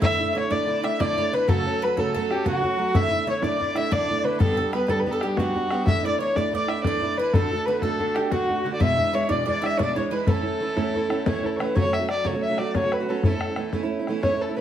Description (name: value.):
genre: celtic folk, Celtic slip jig.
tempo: 123 BPM (dotted quarters).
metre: 9/8.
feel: straight.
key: A mixolydian.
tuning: A4 = 440 Hz.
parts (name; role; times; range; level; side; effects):
dark fiddle; melody; 0.0-14.6 s; F#4 to E5; -26 LUFS; left 1 dB; none.
mandolin; second line; 0.0-11.4 s; F#4 to E5; -32 LUFS; right 4 dB; none.
wooden flute; second line; 0.0-14.6 s; F#4 to E5; -29 LUFS; left 4 dB; none.
picked steel-string acoustic guitar; accompaniment; 0.0-14.6 s; E2 to G4; -26 LUFS; right 4 dB; none.
bodhran; percussion; 0.0-14.3 s; none; -26 LUFS; left 2 dB; none.
room: wet studio reverb, RT60 0.5 s.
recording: heard from further back in the room.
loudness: -21 LUFS.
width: side -10 dB against mid.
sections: 0.0-11.8 A section; 11.8-14.6 B section.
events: none.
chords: 0.0 Asus4; 1.5 F#m; 2.9 Asus4; 4.4 G; 5.9 Asus4; 7.3 D; 8.8 E7; 10.3 A; 11.8 F#m; 13.2 A/E.